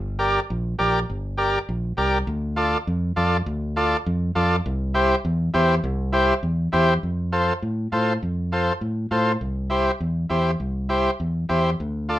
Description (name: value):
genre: latin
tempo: 202 BPM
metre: 4/4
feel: straight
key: unclear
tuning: A4 = 442 Hz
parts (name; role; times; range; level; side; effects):
- fingered electric bass; bass; 0.0-12.2 s; G1 to A2; -24 LUFS; equal; none
- combo organ; accompaniment; 0.2-12.2 s; E4 to D5; -21 LUFS; equal; none
room: moderate small room reverb, RT60 0.5 s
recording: minimal, uncompressed stereo recording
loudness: -20 LUFS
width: side -14 dB against mid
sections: 0.0-7.0 A section; 7.0-12.2 A section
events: none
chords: 0.0 Gm; 2.3 Dm; 4.7 C; 7.0 F; 9.4 C